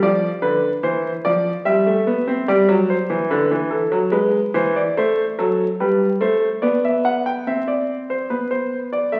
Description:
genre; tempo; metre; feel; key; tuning
classical, baroque-style two-part invention for grand piano; 73 BPM; 3/4; straight; unclear; A4 = 439 Hz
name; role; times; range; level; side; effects
clear concert grand piano; solo; 0.0-9.2 s; D3 to G5; -19 LUFS; equal; none
room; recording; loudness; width
wet recital hall reverb, RT60 1.5 s; very old 78 rpm record, vinyl crackle; -19 LUFS; mono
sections
0.0-7.4 A section; 7.4-9.2 B section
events
none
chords
0.0 Dm; 1.7 C/G; 2.5 G; 4.1 E7/G#; 5.0 Am; 6.6 G/B; 7.4 N.C.

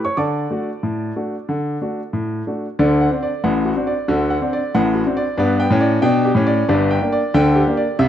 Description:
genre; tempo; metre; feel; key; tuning
ragtime piano; 92 BPM; 2/4; swing 60% on 16ths; D major; A4 = 440 Hz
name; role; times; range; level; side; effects
clear grand piano; solo; 0.0-8.1 s; G1 to D6; -16 LUFS; equal; slapback echo
room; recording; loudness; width
light reverb, studio reverb; dry, close 1970s-style studio recording; -16 LUFS; side -10 dB against mid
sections
0.0-2.8 A section; 2.8-8.1 B section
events
none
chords
0.2 D; 2.8 D7; 5.4 G; 6.7 Gm

